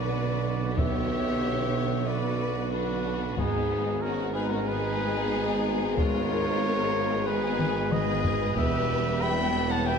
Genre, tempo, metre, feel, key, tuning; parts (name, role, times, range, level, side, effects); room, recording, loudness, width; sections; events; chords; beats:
cinematic, epic orchestral film score; 92 BPM; 4/4; straight; A4 = 437 Hz
clear symphonic violin section; melody; 0.0-10.0 s; B3 to E5; -36 LUFS; left 6 dB
warm symphonic violin section; second line; 0.0-10.0 s; D#4 to G5; -34 LUFS; left 4 dB
rich symphonic viola section; accompaniment; 0.0-10.0 s; D3 to B3; -35 LUFS; left 1 dB
bright trombone section; sustained chords; 0.0-10.0 s; B2 to G#3; -37 LUFS; right 3 dB
dark French horn section; sustained chords; 0.0-10.0 s; B3 to B4; -34 LUFS; left 6 dB
mellow trumpet; stabs; 0.0-10.0 s; G#4 to B5; -32 LUFS; right 1 dB
clear symphonic cello section; bass; 0.0-10.0 s; E2 to B2; -35 LUFS; right 3 dB
clear tuba; bass; 0.0-10.0 s; E1 to B1; -35 LUFS; right 4 dB
rich symphonic double bass section; bass; 0.0-10.0 s; E1 to B1; -34 LUFS; right 6 dB
taiko ensemble; drums; 0.8-9.2 s; -30 LUFS; left 2 dB
wet scoring stage reverb, RT60 1.9 s; -24 LUFS; side -6 dB against mid
0.0-10.0 A section
drum fill 7.6-8.6
0.0 Bm; 3.4 G#m; 8.6 Em
0.13 | 0.78 1.43 2.08 2.73 | 3.38 4.03 4.67 5.32 | 5.97 6.62 7.27 7.92 | 8.57 9.22 9.87